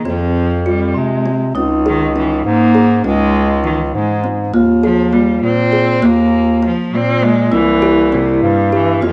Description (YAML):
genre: contemporary instrumental, chamber music in an uneven meter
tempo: 201 BPM (eighths)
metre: 5/8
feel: straight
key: unclear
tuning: A4 = 441 Hz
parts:
  - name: clear cello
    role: melody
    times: 0.0-9.1 s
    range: C3 to C4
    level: -19 LUFS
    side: equal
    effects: none
  - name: vibraphone with soft mallets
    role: second line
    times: 0.0-9.1 s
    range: C4 to F4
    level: -21 LUFS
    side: equal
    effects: none
  - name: kalimba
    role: arpeggios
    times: 0.1-9.1 s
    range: Fb3 to Ab4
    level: -20 LUFS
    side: equal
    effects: none
  - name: clear bass clarinet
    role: bass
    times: 0.1-9.1 s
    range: C2 to C3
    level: -19 LUFS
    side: equal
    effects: none
room: light reverb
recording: worn, warbling old tape, cassette tape, warbly pitch drift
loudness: -14 LUFS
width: mono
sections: 0.0-9.1 A section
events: none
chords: 0.0 Fm; 1.6 Dbmadd9; 4.5 Ebsus4; 7.5 C